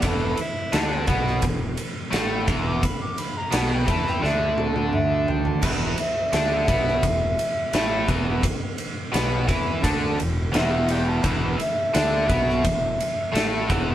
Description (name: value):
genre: blues rock power trio and southern rock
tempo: 86 BPM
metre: 4/4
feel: straight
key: E minor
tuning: A4 = 439 Hz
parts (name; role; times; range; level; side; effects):
- overdriven harmonica; melody; 0.0-13.7 s; E4 to D6; -26 LUFS; equal; none
- cranked stack guitar; riff; 0.0-13.9 s; E2 to E4; -25 LUFS; right 1 dB; overdrive
- fuzz fingered electric bass; bass; 0.0-13.9 s; E1 to E2; -28 LUFS; equal; overdrive
- huge arena drum kit; drums; 0.0-13.9 s; crash cymbal, kick drum, ride cymbal, snare drum, toms; -25 LUFS; equal; none
room: moderate stone room reverb, RT60 0.9 s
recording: band playing live in one room, lossy compression artefacts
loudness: -20 LUFS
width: side -12 dB against mid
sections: 0.0-13.9 A section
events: harmonica solo 0.0-13.9; drum fill 4.2-5.6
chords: 0.0 E5